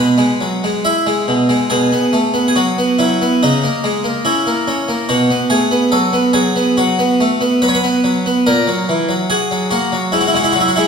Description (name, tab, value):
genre	classical, baroque-style suite movement for harpsichord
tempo	71 BPM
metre	4/4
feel	rubato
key	unclear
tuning	A4 = 440 Hz
part	harpsichord	solo	0.0-10.9 s	G#2 to E5	-12 LUFS	equal	none
room	wet recital hall reverb, RT60 1.7 s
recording	recorded in a church or concert hall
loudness	-13 LUFS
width	side -6 dB against mid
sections	0.0-10.9 A section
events	none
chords	0.0 E; 1.7 B5; 3.4 A#dim/C#; 5.1 B5; 8.5 F#/A#; 10.1 E/G#